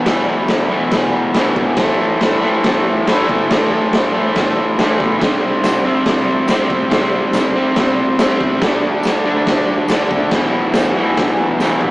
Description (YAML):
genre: garage rock duo or trio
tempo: 140 BPM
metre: 4/4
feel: straight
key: E minor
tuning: A4 = 441 Hz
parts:
  - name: combo organ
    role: sustained chords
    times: 0.0-11.9 s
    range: E4 to B5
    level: -24 LUFS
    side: equal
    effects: none
  - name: overdriven electric guitar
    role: riff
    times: 0.0-11.9 s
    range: E2 to D4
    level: -17 LUFS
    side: equal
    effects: none
  - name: raw garage drum kit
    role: drums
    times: 0.1-11.9 s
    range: crash cymbal, kick drum, snare drum, toms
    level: -16 LUFS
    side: equal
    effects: none
  - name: tambourine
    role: percussion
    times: 5.6-11.7 s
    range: none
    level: -37 LUFS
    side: left 2 dB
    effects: none
room: light reverb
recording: rough rehearsal-room recording, warm saturation, small speaker sound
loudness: -13 LUFS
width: side -20 dB against mid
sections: 0.0-11.9 A section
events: transistor combo organ fill 11.2-11.9; drum fill 11.6-11.9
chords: 0.0 Em; 1.8 Am; 5.2 C; 8.6 D; 10.3 Em